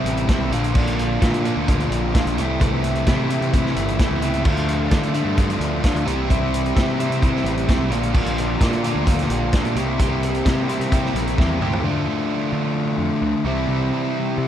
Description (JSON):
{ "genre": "indie rock", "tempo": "130 BPM", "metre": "4/4", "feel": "straight", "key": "D minor", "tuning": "A4 = 440 Hz", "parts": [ { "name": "overdriven electric guitar", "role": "riff", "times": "0.0-14.5 s", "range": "Bb2 to G4", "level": "-24 LUFS", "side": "right 9 dB", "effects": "lush chorus" }, { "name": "thick fuzz guitar", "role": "riff", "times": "0.0-14.5 s", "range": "Bb2 to F4", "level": "-24 LUFS", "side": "left 10 dB", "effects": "distortion" }, { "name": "growling picked electric bass", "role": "bass", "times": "0.0-14.5 s", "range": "G1 to D3", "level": "-24 LUFS", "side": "equal", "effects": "overdrive" }, { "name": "vintage drum kit", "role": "drums", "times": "0.1-11.8 s", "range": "crash cymbal, hi-hat, kick drum, snare drum, toms", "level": "-22 LUFS", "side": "equal", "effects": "none" }, { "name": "brassy analog pad", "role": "sustained chords", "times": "4.4-11.8 s", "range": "G4 to C6", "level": "-34 LUFS", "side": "right 1 dB", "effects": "none" } ], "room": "studio ambience", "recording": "dark, warm production", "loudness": "-18 LUFS", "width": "side -10 dB against mid", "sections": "0.0-11.8 A section; 11.8-14.5 B section", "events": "drum fill 11.4-11.8", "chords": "0.0 C; 0.5 Bb; 2.4 Am/C; 4.5 Dm7; 6.1 C; 7.9 Bb6; 9.8 C7; 11.8 Dm; 13.5 C", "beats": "0.29 | 0.75 1.22 1.68 2.14 | 2.60 3.07 3.53 3.99 | 4.46 4.92 5.38 5.84 | 6.30 6.76 7.22 7.68 | 8.14 8.60 9.06 9.53 | 9.99 10.45 10.91 11.37 | 11.83 12.30 12.76 13.22 | 13.69 14.15" }